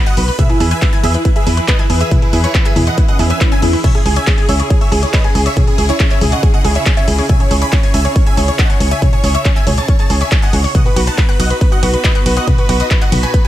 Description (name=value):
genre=uplifting trance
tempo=139 BPM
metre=4/4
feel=straight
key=C# minor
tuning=A4 = 442 Hz
part: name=big supersaw lead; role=melody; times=0.0-13.5 s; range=E4 to B5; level=-20 LUFS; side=right 1 dB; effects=phaser, sidechain pumping, ping-pong delay
part: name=wide unison pluck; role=second line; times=0.0-13.5 s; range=E4 to B5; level=-25 LUFS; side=equal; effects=sidechain pumping, ping-pong delay
part: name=bright symphonic string section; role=sustained chords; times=0.0-13.5 s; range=C#3 to B4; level=-24 LUFS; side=equal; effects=sidechain pumping
part: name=analog pluck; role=arpeggios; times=0.1-13.5 s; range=B3 to G#5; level=-24 LUFS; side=left 1 dB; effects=chorus, sidechain pumping, ping-pong delay
part: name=big-room dance drum kit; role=drums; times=0.1-13.5 s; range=crash cymbal, handclaps, hi-hat, ride cymbal, toms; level=-20 LUFS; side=left 2 dB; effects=none
part: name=solid FM bass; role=bass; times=0.2-13.3 s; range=B1 to E2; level=-15 LUFS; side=equal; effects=sidechain pumping
part: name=electronic kick drum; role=drums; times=0.4-13.4 s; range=none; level=-13 LUFS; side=equal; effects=none
part: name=swell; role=sound effects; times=3.1-3.8 s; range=none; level=-23 LUFS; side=left 2 dB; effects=none
room=little or no reverb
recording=none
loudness=-10 LUFS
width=side -13 dB against mid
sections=0.0-13.5 A section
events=swell 3.1-3.8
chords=0.4 E; 3.8 C#m; 10.7 B